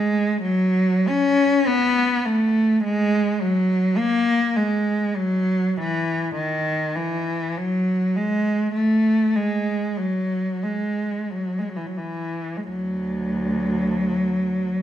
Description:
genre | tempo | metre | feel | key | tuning
classical, free, expressive piece for unaccompanied cello | 43-53 BPM | 4/4 | rubato | unclear | A4 = 442 Hz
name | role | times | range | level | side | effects
rich cello | solo | 0.0-14.8 s | D2 to C#4 | -20 LUFS | equal | none
room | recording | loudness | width
moderate recital hall reverb, RT60 1.5 s | minimal, uncompressed stereo recording | -20 LUFS | side -11 dB against mid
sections
0.0-14.8 A section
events
none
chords
none

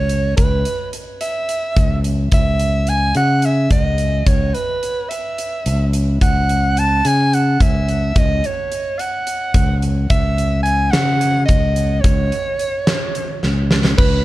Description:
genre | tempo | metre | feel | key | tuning
progressive instrumental, band music in an uneven meter | 216 BPM (eighths) | 7/8 | straight | unclear | A4 = 440 Hz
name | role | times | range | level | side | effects
breathy soprano saxophone | melody | 0.0-14.2 s | B4 to A5 | -20 LUFS | right 1 dB | tape echo
overdriven fingered electric bass | bass | 0.0-14.2 s | C#2 to C#3 | -17 LUFS | equal | none
huge arena drum kit | drums | 0.1-14.1 s | crash cymbal, hi-hat, kick drum, snare drum | -19 LUFS | equal | none
room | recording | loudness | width
light reverb | dark, warm production | -14 LUFS | side -16 dB against mid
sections
0.0-14.0 A section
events
drum fill 13.4-14.0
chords
0.0 F#5/C#; 12.0 N.C.

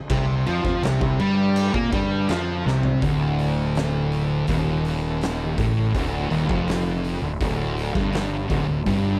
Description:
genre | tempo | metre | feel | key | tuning
stoner and doom metal | 82 BPM | 4/4 | straight | D minor | A4 = 441 Hz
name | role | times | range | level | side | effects
fuzz guitar | riff | 0.1-9.2 s | D2 to Bb3 | -27 LUFS | equal | distortion
fuzz guitar | riff | 0.1-3.0 s | C3 to Bb3 | -30 LUFS | equal | distortion
thick fuzz guitar | riff | 0.1-9.2 s | D2 to Bb3 | -29 LUFS | equal | distortion
fuzz fingered electric bass | bass | 0.1-9.2 s | D1 to Bb2 | -29 LUFS | equal | overdrive, tube saturation
oversized low-tuned drum kit | drums | 0.1-9.0 s | crash cymbal, hi-hat, kick drum, snare drum, toms | -31 LUFS | equal | none
room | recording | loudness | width
little or no reverb | none | -23 LUFS | mono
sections
0.0-3.0 A section; 3.0-9.2 B section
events
drum fill 2.7-3.0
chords
0.0 C5; 3.0 Dm

